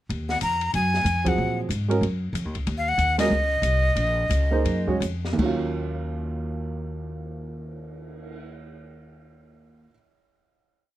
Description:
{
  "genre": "modal jazz",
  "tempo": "159-187 BPM",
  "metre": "4/4",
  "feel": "swing 62% on 8ths",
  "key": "Eb dorian",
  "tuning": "A4 = 437 Hz",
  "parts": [
    { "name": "upright bass", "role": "bass", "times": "0.1-9.9 s", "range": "Bb1 to Bb2", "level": "-26 LUFS", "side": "equal", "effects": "none" },
    { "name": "open jazz drum kit", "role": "drums", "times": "0.1-8.3 s", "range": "crash cymbal, cymbal swell, hi-hat, kick drum, ride cymbal, snare drum", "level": "-35 LUFS", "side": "left 2 dB", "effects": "none" },
    { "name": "breathy bright jazz flute", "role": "melody", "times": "0.3-5.0 s", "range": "Eb5 to Bb5", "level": "-24 LUFS", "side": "left 1 dB", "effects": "none" },
    { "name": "dark upright piano", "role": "accompaniment", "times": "1.2-9.9 s", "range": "Eb2 to Db5", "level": "-28 LUFS", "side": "right 4 dB", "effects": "none" }
  ],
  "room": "little or no reverb",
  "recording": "close, detailed microphones",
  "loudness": "-22 LUFS",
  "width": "side -14 dB against mid",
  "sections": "0.1-5.4 A section; 5.4-8.4 final chord",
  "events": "band accent 1.2, 3.1; slowing down 2.7-5.4",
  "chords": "0.1 Ebm9",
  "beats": "| 0.09 0.41 0.73 1.05 | 1.37 1.70 2.02 2.34 | 2.66 2.98 3.30 3.63 | 3.96 4.30 4.65 5.01 | 5.38 5.75 6.13 6.51 | 6.88 7.26 7.63 8.01"
}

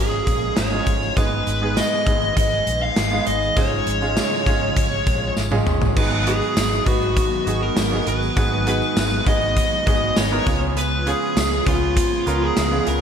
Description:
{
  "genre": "1980s-style pop",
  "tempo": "100 BPM",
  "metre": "4/4",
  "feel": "straight",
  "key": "G# dorian",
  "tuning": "A4 = 440 Hz",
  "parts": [
    { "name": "fuzz lead guitar", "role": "melody", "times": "0.0-13.0 s", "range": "E#4 to E#5", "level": "-22 LUFS", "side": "left 1 dB", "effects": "distortion, slapback echo" },
    { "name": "clear grand piano", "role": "accompaniment", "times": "0.0-13.0 s", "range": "G#2 to B4", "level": "-25 LUFS", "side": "right 4 dB", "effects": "slapback echo" },
    { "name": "ensemble organ-string", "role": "sustained chords", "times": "0.0-13.0 s", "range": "C#3 to G#4", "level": "-30 LUFS", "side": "equal", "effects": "ensemble chorus" },
    { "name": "vintage muted fingered electric bass", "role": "bass", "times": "0.0-13.0 s", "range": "G#1 to C#2", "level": "-25 LUFS", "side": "equal", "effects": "none" },
    { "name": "gated 80s drum kit", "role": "drums", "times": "0.3-13.0 s", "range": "crash cymbal, hi-hat, kick drum, snare drum, tambourine, toms", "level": "-22 LUFS", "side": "equal", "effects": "none" },
    { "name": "tambourine", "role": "percussion", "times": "0.3-13.0 s", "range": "none", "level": "-39 LUFS", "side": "left 6 dB", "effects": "none" }
  ],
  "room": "moderate lush hall reverb, RT60 1.8 s, small room ambience",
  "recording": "big arena sound",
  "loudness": "-17 LUFS",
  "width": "side -7 dB against mid",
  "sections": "0.0-6.0 A section; 6.0-13.0 B section",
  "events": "drum fill 5.4-6.0",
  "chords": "0.0 C#/G#; 1.2 G#m; 3.6 C#/G#; 6.0 G#m7; 10.5 C#7",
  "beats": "0.57 | 1.17 1.77 2.37 2.97 | 3.57 4.17 4.77 5.37 | 5.97 6.57 7.17 7.77 | 8.37 8.97 9.57 10.17 | 10.77 11.37 11.97 12.57"
}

